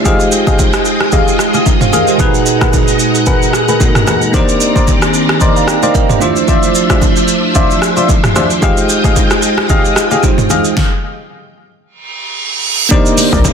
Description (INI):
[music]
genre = amapiano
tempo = 112 BPM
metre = 4/4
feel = swing 55% on 16ths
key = unclear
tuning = A4 = 444 Hz
[part]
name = bell-like tine electric piano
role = accompaniment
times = 0.0-13.5 s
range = Bb2 to Bb5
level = -16 LUFS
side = moving between equal and right 13 dB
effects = auto-pan
[part]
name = string machine, violins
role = sustained chords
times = 0.0-13.5 s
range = Eb3 to Bb5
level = -16 LUFS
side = equal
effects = ensemble chorus, sidechain pumping
[part]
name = deep mellow chord stab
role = stabs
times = 0.1-13.4 s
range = Eb4 to Gb5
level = -16 LUFS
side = left 3 dB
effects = chorus, tape echo
[part]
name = deep house drum kit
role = drums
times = 0.1-13.5 s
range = hi-hat, kick drum, rim click, shaker, snare drum, toms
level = -12 LUFS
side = equal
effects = soft clipping on snare
[part]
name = congas and bongos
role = percussion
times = 0.1-13.5 s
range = none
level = -22 LUFS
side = left 4 dB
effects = none
[part]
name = reverse cymbal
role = sound effects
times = 12.1-12.9 s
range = none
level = -15 LUFS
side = right 6 dB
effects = none
[part]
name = hollow log drum bass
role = bass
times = 13.3-13.5 s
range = C2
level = -13 LUFS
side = equal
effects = none
[sound]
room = light reverb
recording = dense, heavily limited modern master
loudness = -9 LUFS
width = side -6 dB against mid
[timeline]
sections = 0.0-12.9 A section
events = stop 10.8-12.9; reverse cymbal 12.1-12.9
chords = 0.1 Fm9; 2.2 Abm9; 4.3 Cm9; 6.2 Dm9; 8.6 Fm9; 10.8 N.C.; 12.9 Cm9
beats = | 0.05 0.59 1.12 1.66 | 2.20 2.73 3.27 3.80 | 4.34 4.88 5.41 5.95 | 6.48 7.02 7.55 8.09 | 8.62 9.16 9.70 10.23 | 10.77 11.30 11.84 12.38 | 12.91 13.45